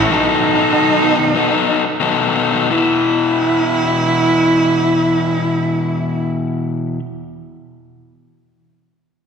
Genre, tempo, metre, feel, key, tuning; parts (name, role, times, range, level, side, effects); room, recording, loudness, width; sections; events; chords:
rock; 86-101 BPM; 4/4; straight; A4 = 439 Hz
warm cello; melody; 0.0-6.2 s; D#4 to E4; -17 LUFS; right 3 dB
overdriven electric guitar; riff; 0.0-7.0 s; E2 to A4; -16 LUFS; left 4 dB
wet concert hall reverb, RT60 2.4 s; recorded in a church or concert hall; -13 LUFS; side -6 dB against mid
0.0-2.7 A section; 2.7-5.5 B section
slowing down 0.0-2.7
0.1 B7; 2.7 E5